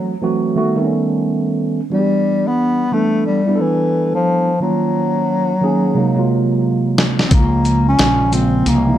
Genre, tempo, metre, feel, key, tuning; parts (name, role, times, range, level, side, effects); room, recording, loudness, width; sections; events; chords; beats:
hip hop, jazz-hop; 89 BPM; 4/4; swing 62% on 16ths; A4 = 442 Hz
breathy bass clarinet; melody; 0.0-9.0 s; E3 to Db4; -17 LUFS; left 2 dB; tape echo
mellow tine electric piano; accompaniment; 0.0-9.0 s; C3 to A4; -17 LUFS; right 3 dB; lush chorus
dusty soul sampler-style drum kit; drums; 7.0-8.9 s; hi-hat, kick drum, shaker, snare drum; -16 LUFS; equal
fretless electric bass; bass; 7.3-9.0 s; Bb1 to Db2; -17 LUFS; equal; lush chorus
moderate small room reverb, RT60 0.5 s; dark, warm production; -14 LUFS; side -12 dB against mid
0.0-9.0 A section
drum fill 6.0-7.3
0.0 F#m7b5; 0.6 B7b13; 1.9 Em7; 4.6 Ebm9; 6.0 Ab9; 7.3 Db6
0.57 1.25 | 1.92 2.59 3.27 3.94 | 4.62 5.29 5.96 6.64 | 7.31 7.99 8.66